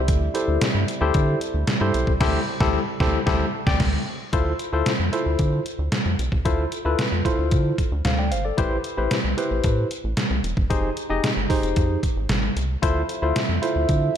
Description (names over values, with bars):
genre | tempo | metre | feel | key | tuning
early-eighties boogie funk | 113 BPM | 4/4 | straight | D dorian | A4 = 440 Hz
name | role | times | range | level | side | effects
warm French horn section | sustained chords | 0.0-4.3, 12.8-14.2 s | C3 to E5 | -32 LUFS | right 4 dB | none
rubbery square bass | bass | 0.0-14.1 s | E1 to D3 | -24 LUFS | equal | none
detuned 8-bit digital drum machine | drums | 0.1-14.0 s | crash cymbal, hi-hat, kick drum, snare drum | -24 LUFS | equal | none
barky tine electric piano | accompaniment | 0.3-14.1 s | Eb4 to G5 | -25 LUFS | moving between left 6 dB and right 2 dB | overdrive, auto-pan, slapback echo
room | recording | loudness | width
light reverb, digital ambience | none | -20 LUFS | side -9 dB against mid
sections
0.0-4.3 A section; 4.3-14.2 B section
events
band accent 2.2-4.3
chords
0.0 D9sus4; 4.3 Dm9; 8.6 Am9; 10.7 Fm9; 12.8 Dm9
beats
| 0.08 0.61 1.15 1.68 | 2.21 2.74 3.27 3.80 | 4.33 4.86 5.39 5.92 | 6.46 6.99 7.52 8.05 | 8.58 9.11 9.64 10.17 | 10.70 11.23 11.77 12.30 | 12.83 13.36 13.89